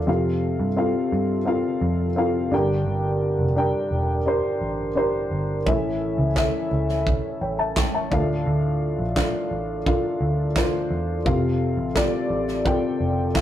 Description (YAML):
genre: piano-driven pop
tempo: 86 BPM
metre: 4/4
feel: straight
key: D minor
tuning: A4 = 439 Hz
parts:
  - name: dark upright piano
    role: accompaniment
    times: 0.0-13.4 s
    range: G2 to C#6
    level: -23 LUFS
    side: left 1 dB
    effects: none
  - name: vintage muted picked electric bass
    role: bass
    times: 0.0-13.4 s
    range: E1 to G2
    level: -26 LUFS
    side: equal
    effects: none
  - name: modern studio drum kit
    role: drums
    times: 5.7-13.4 s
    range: handclaps, kick drum, snare drum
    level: -25 LUFS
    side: right 1 dB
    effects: none
room: moderate studio reverb, RT60 0.7 s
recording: rough rehearsal-room recording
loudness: -20 LUFS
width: side -11 dB against mid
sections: 0.0-13.4 A section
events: none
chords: 0.1 F; 2.5 Gm; 5.7 A; 8.1 Dm; 11.3 F